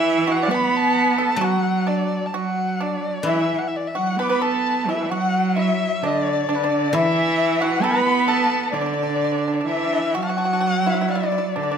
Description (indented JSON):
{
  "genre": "chinese traditional, Chinese chamber ensemble",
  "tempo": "65 BPM",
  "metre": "2/4",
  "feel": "rubato",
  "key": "unclear",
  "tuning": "A4 = 440 Hz",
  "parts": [
    { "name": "warm erhu", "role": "melody", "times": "0.0-11.8 s", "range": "B4 to D6", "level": "-24 LUFS", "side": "left 2 dB", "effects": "none" },
    { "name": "bright cello", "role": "second line", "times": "0.0-11.8 s", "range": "D3 to B3", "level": "-22 LUFS", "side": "right 4 dB", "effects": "none" },
    { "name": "pipa", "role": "second line", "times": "0.0-11.8 s", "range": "D4 to D5", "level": "-27 LUFS", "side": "right 4 dB", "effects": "none" },
    { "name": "guzheng", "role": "accompaniment", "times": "0.0-9.7 s", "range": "E3 to F#3", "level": "-28 LUFS", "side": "left 4 dB", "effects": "none" },
    { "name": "reedy large dizi", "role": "second line", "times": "3.2-11.8 s", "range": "E4 to B5", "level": "-26 LUFS", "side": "left 9 dB", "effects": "none" }
  ],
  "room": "wet recital hall reverb, RT60 1.4 s",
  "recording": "none",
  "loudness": "-18 LUFS",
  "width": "side -7 dB against mid",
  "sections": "0.0-10.6 A section; 10.6-11.8 B section",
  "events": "none",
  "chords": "none"
}